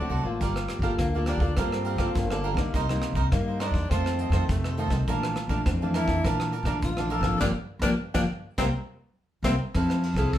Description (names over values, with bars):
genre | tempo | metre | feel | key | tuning
samba and choro | 103 BPM | 4/4 | straight | F major | A4 = 440 Hz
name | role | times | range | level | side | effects
breathy tenor saxophone | second line | 0.0-9.5 s | A3 to A4 | -32 LUFS | left 2 dB | none
cavaquinho | accompaniment | 0.0-10.3 s | Eb4 to A5 | -33 LUFS | right 4 dB | none
nylon-string guitar | accompaniment | 0.0-10.4 s | F2 to A4 | -30 LUFS | left 2 dB | none
upright bass | bass | 0.0-10.4 s | G1 to Bb2 | -28 LUFS | equal | none
vintage brush drum kit | drums | 0.4-10.4 s | hi-hat, kick drum, ride cymbal, rim click, snare drum | -30 LUFS | equal | none
mellow clarinet | melody | 10.2-10.4 s | Ab4 to A4 | -31 LUFS | left 3 dB | none
room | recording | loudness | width
wet studio reverb, RT60 0.6 s | heard from further back in the room | -24 LUFS | side -12 dB against mid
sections
0.0-9.8 A section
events
tenor saxophone solo 0.0-9.8; band accent 7.4-9.8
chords
0.4 Gm9; 2.7 Cm7; 3.9 F7; 5.1 Bbmaj7#11; 7.4 Gm7; 8.6 C7; 9.8 Fmaj7